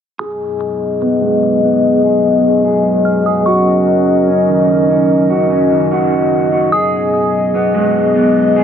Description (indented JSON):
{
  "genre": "hip hop",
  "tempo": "147 BPM",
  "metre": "4/4",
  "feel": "half-time",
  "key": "G# minor",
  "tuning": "A4 = 441 Hz",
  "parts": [
    { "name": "delicate synth tine bell", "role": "melody", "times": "0.2-8.3 s", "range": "C#6 to E#6", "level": "-21 LUFS", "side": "right 1 dB", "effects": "chorus, phaser, low-pass filter, ping-pong delay" },
    { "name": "dark analog pad", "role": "sustained chords", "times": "0.2-8.6 s", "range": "F#3 to D#5", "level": "-12 LUFS", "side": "left 1 dB", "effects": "chorus, low-pass filter" },
    { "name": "electric guitar at the edge of break-up", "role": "arpeggios", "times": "0.2-8.6 s", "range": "D#3 to G#4", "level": "-16 LUFS", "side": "right 1 dB", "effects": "lush chorus, low-pass filter, ping-pong delay" }
  ],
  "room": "moderate huge ambient reverb, RT60 6.7 s",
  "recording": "none",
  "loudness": "-11 LUFS",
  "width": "side -8 dB against mid",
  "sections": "0.2-8.6 A section",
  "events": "filter sweep 0.2-8.6",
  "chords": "0.2 G#m7; 3.5 D#m7; 6.7 G#m7"
}